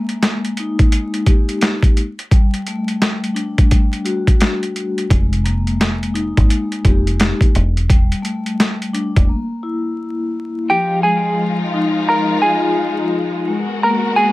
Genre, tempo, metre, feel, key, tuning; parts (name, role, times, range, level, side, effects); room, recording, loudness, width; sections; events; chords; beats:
hip hop, boom-bap hip-hop; 86 BPM; 4/4; swing 62% on 16ths; F phrygian from 10.7 s; A4 = 440 Hz
vibraphone with soft mallets; accompaniment; 0.0-14.3 s; F3 to G4; -20 LUFS; left 2 dB; cassette tape, high-pass filter, low-pass filter
boom bap sampler-style drum kit; drums; 0.1-9.3 s; hi-hat, kick drum, snare drum; -14 LUFS; equal; overdrive
deep dub fingered electric bass; bass; 5.1-9.3 s; E1 to Ab1; -18 LUFS; equal
clean electric guitar; melody; 10.7-14.3 s; G4 to Bb5; -17 LUFS; right 1 dB; tremolo, high-pass filter, low-pass filter, ping-pong delay
warm symphonic string section; sustained chords; 10.7-14.3 s; Cb3 to Bb4; -23 LUFS; left 1 dB; high-pass filter, low-pass filter
little or no reverb; vinyl crackle; -14 LUFS; side -19 dB against mid
0.0-10.7 A section; 10.7-14.3 B section
break 9.3-10.7
0.0 Ebadd11/Ab; 2.0 Dadd11/G; 5.1 Fm11; 7.5 Em7; 9.3 N.C.; 10.7 Fm9; 13.5 Abm9
0.22 0.92 1.62 | 2.32 3.01 3.71 4.41 | 5.11 5.80 6.50 7.20 | 7.90 8.60 9.29 9.99 | 10.69 11.38 12.08 12.78 | 13.48 14.18